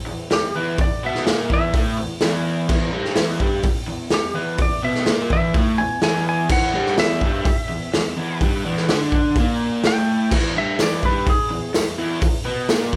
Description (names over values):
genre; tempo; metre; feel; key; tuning
garage rock duo or trio; 126 BPM; 4/4; straight; unclear; A4 = 443 Hz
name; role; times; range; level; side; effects
raw garage guitar; riff; 0.1-13.0 s; E2 to D4; -25 LUFS; equal; overdrive
clean lap steel guitar; melody; 0.3-11.7 s; G4 to G#5; -26 LUFS; equal; none
raw garage drum kit; drums; 0.3-13.0 s; crash cymbal, hi-hat, kick drum, snare drum; -23 LUFS; equal; none
tambourine; percussion; 10.8-12.8 s; none; -40 LUFS; equal; none
room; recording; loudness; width
light reverb; band playing live in one room; -20 LUFS; mono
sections
0.0-13.0 A section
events
electric slide guitar solo 0.0-13.0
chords
0.0 E5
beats
0.31 | 0.79 1.26 1.74 2.22 | 2.69 3.17 3.65 4.12 | 4.60 5.08 5.55 6.03 | 6.51 6.99 7.46 7.94 | 8.41 8.89 9.37 9.84 | 10.32 10.79 11.27 11.74 | 12.22 12.69